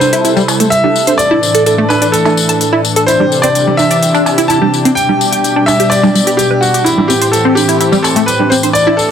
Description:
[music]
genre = progressive house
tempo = 127 BPM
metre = 4/4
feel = straight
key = A minor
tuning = A4 = 440 Hz
[part]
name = bright concert grand piano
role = melody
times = 0.0-9.1 s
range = E4 to A5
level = -13 LUFS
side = equal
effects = tape echo
[part]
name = warm analog pad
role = sustained chords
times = 0.0-9.1 s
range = A2 to A4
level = -15 LUFS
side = left 1 dB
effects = chorus
[part]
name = electronic tambourine and hi-hat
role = drums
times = 0.0-9.1 s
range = none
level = -18 LUFS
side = left 5 dB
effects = overdrive
[part]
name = congas and cowbell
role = percussion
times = 0.0-9.0 s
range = none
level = -18 LUFS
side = right 6 dB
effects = none
[part]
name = tight sequenced synth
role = arpeggios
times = 0.1-9.0 s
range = G3 to A5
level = -14 LUFS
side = equal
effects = chorus, phaser, tape echo
[sound]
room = light reverb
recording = dense, heavily limited modern master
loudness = -8 LUFS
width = side -8 dB against mid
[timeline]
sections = 0.0-9.1 A section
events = none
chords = 0.0 Am7; 1.2 Dsus2; 3.1 Cadd9; 5.0 G; 6.9 Am7

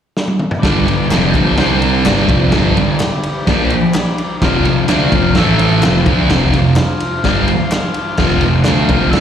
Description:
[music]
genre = garage rock duo or trio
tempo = 127 BPM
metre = 4/4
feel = straight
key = unclear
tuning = A4 = 440 Hz
[part]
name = vintage drum kit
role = drums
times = 0.2-9.2 s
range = crash cymbal, kick drum, ride cymbal, snare drum, toms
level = -17 LUFS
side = equal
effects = none
[part]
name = combo organ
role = sustained chords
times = 0.6-9.2 s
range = E4 to G5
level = -23 LUFS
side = left 2 dB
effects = phaser
[part]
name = thick fuzz guitar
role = riff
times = 0.6-9.2 s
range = F2 to D4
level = -13 LUFS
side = right 1 dB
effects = distortion, slapback echo
[part]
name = fuzz picked electric bass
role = bass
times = 0.6-9.2 s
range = F1 to D2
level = -18 LUFS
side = equal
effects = overdrive, tube saturation
[part]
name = group handclap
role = percussion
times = 1.1-8.8 s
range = none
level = -29 LUFS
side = left 3 dB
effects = none
[sound]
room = light reverb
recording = live gig heard through the venue's PA, recital hall reverb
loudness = -11 LUFS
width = side -9 dB against mid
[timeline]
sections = 0.6-9.2 A section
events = drum fill 0.2-0.6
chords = 0.0 N.C.; 0.6 G; 1.6 C5; 2.0 G; 4.4 F5; 5.4 A5; 5.8 F5

